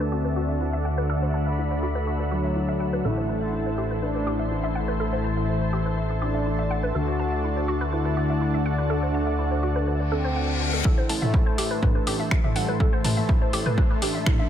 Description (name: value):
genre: melodic techno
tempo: 123 BPM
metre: 4/4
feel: straight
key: A dorian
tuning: A4 = 437 Hz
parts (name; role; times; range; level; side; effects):
- expressive synth lead; melody; 0.0-14.5 s; F#3 to F#4; -32 LUFS; equal; analog chorus, cassette tape, sidechain pumping, digital delay
- lush unison pad; sustained chords; 0.0-14.5 s; E4 to B5; -34 LUFS; right 1 dB; chorus, sidechain pumping
- woody wave-folded pluck; arpeggios; 0.0-14.5 s; E4 to C6; -32 LUFS; equal; analog chorus, sidechain pumping, digital delay
- analog synth brass; stabs; 0.0-14.5 s; A2 to D4; -29 LUFS; left 2 dB; chorus, sidechain pumping, digital delay
- fat analog bass; bass; 0.0-14.4 s; G1 to D2; -27 LUFS; equal; sidechain pumping, high-pass filter
- ethereal airy pad; texture; 0.0-14.5 s; D4 to C6; -34 LUFS; right 1 dB; ensemble chorus, built-in reverb, sidechain pumping
- reverse cymbal and riser; sound effects; 10.1-14.5 s; none; -34 LUFS; left 4 dB; none
- electronic kick drum; drums; 10.8-14.4 s; none; -22 LUFS; equal; none
- techno drum kit; drums; 11.1-14.4 s; finger snaps, hi-hat, toms; -28 LUFS; right 1 dB; low-pass filter on hats, low-pass filter on toms, low-pass filter on snare, low-pass filter on room
room: moderate concert hall reverb, RT60 1.9 s, digital ambience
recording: low-pass filter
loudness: -22 LUFS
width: side -10 dB against mid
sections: 0.0-10.9 A section; 10.9-14.5 B section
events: filter sweep on analog synth pad 0.0-10.9; filter sweep 0.0-10.9; reverse cymbal 10.1-10.9; build-up 10.9-14.5; filter sweep on analog synth lead 10.9-14.5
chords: 0.0 D; 3.0 Am; 6.9 D; 10.9 Am